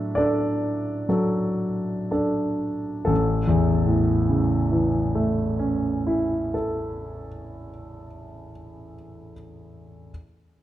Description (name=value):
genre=classical, romantic nocturne for solo piano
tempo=18-26 BPM (dotted quarters)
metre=6/8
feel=rubato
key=A major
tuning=A4 = 440 Hz
part: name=warm concert grand piano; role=solo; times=0.0-10.1 s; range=A1 to E5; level=-22 LUFS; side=equal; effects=none
room=moderate recital hall reverb, RT60 1.8 s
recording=dark, warm production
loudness=-21 LUFS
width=side -13 dB against mid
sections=0.0-3.1 A section; 3.1-7.9 B section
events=slowing down 0.0-3.1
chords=0.0 D/A; 3.1 A